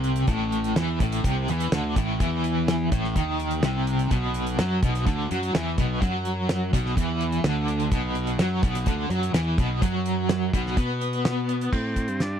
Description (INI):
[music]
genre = psychedelic rock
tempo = 126 BPM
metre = 4/4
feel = straight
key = unclear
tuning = A4 = 440 Hz
[part]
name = cranked stack guitar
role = riff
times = 0.0-11.7 s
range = A2 to B3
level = -26 LUFS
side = equal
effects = overdrive, tremolo
[part]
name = fuzz fingered electric bass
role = bass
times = 0.0-12.4 s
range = A1 to B2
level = -27 LUFS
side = equal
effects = overdrive
[part]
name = damped 70s drum kit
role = drums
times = 0.0-12.3 s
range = crash cymbal, hi-hat, kick drum, snare drum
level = -25 LUFS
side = equal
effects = none
[part]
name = combo organ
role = melody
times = 11.7-12.4 s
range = C4 to D4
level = -29 LUFS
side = right 2 dB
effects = tape echo
[sound]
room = little or no reverb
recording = dry, close 1970s-style studio recording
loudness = -22 LUFS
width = side -8 dB against mid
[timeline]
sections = 0.0-11.7 A section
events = none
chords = 0.0 Am; 4.1 Bm; 11.7 Am7